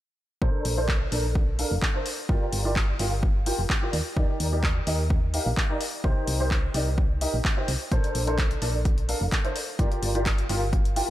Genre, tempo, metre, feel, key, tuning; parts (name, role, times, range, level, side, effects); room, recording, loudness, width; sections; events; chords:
piano house; 128 BPM; 4/4; swing 53% on 16ths; Bb major; A4 = 444 Hz
clear concert grand piano; riff; 0.4-11.1 s; D4 to G5; -30 LUFS; equal; ensemble chorus, sidechain pumping, low-pass filter, analog delay
solid FM bass; bass; 0.4-11.0 s; F1 to Eb2; -28 LUFS; equal; sidechain pumping
electronic kick drum; drums; 0.4-10.8 s; -25 LUFS; equal
punchy analog drum machine; drums; 0.7-11.1 s; handclaps, hi-hat; -31 LUFS; left 1 dB
light reverb, digital ambience; -23 LUFS; side -14 dB against mid
0.4-11.1 A section
0.4 Bbmaj9; 2.3 Gm7; 3.9 Ebmaj7; 5.8 Cm7; 7.9 Bbmaj9; 9.8 Gm7